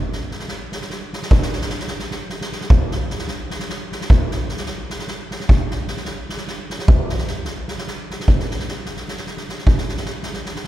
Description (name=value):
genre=balkan folk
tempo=302 BPM (eighths)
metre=7/8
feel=straight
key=none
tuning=none
part: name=soft-mallet drum kit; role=percussion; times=0.1-10.7 s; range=kick drum, snare drum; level=-19 LUFS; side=equal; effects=none
room=moderate church reverb, RT60 2.8 s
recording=recorded in a church or concert hall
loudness=-19 LUFS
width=side -14 dB against mid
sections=0.0-8.3 A section; 8.3-10.7 B section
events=none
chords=none